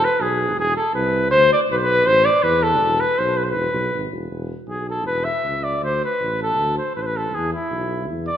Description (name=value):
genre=balkan folk, Balkan brass band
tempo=159 BPM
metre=2/4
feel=swing 54% on 16ths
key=unclear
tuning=A4 = 441 Hz
part: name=clear flugelhorn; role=melody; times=0.0-8.4 s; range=E4 to E5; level=-18 LUFS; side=equal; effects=none
part: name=mellow tuba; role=bass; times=0.0-8.3 s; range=E1 to E2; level=-26 LUFS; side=equal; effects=none
room=moderate scoring stage reverb, RT60 1.5 s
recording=minimal, uncompressed stereo recording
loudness=-17 LUFS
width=side -10 dB against mid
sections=0.0-4.3 A section; 4.3-8.4 B section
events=flugelhorn solo 4.3-8.4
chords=0.0 E; 1.3 Bm; 2.1 A5; 2.8 E5; 5.8 D5; 7.3 E5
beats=0.19 | 0.56 0.94 | 1.31 1.68 | 2.06 2.43 | 2.81 3.18 | 3.56 3.93 | 4.31 4.68 | 5.06 5.44 | 5.82 6.20 | 6.58 6.96 | 7.34 7.71 | 8.09